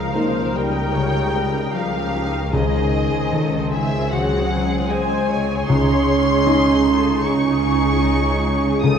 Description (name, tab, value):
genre	cinematic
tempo	76 BPM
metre	4/4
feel	rubato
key	unclear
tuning	A4 = 440 Hz
part	muted studio violin section	melody	0.0-9.0 s	D#5 to D#6	-25 LUFS	left 2 dB	none
part	muted studio violin section	second line	0.0-9.0 s	F#4 to C#5	-28 LUFS	left 2 dB	none
part	felt-muted upright piano	accompaniment	0.0-9.0 s	C#2 to A#4	-24 LUFS	left 1 dB	none
part	muted studio viola section	accompaniment	0.0-9.0 s	B#3 to A#4	-27 LUFS	right 2 dB	none
part	mellow French horn section	sustained chords	0.0-9.0 s	D#3 to C#4	-22 LUFS	right 3 dB	none
part	concert harp	arpeggios	0.0-9.0 s	C#3 to B#5	-26 LUFS	left 6 dB	none
part	muted studio cello section	bass	0.0-9.0 s	C#3	-27 LUFS	right 2 dB	none
part	muted studio double bass section	bass	0.0-9.0 s	C#2	-24 LUFS	right 1 dB	none
room	wet recital hall reverb, RT60 1.5 s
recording	minimal, uncompressed stereo recording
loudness	-16 LUFS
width	side -7 dB against mid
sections	0.0-9.0 A section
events	none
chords	0.0 D#7/C#; 2.5 G#/C#; 5.7 C#sus2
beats	0.15 0.94 1.73 | 2.52 3.31 4.11 4.89 | 5.68 6.46 7.26 8.05 | 8.84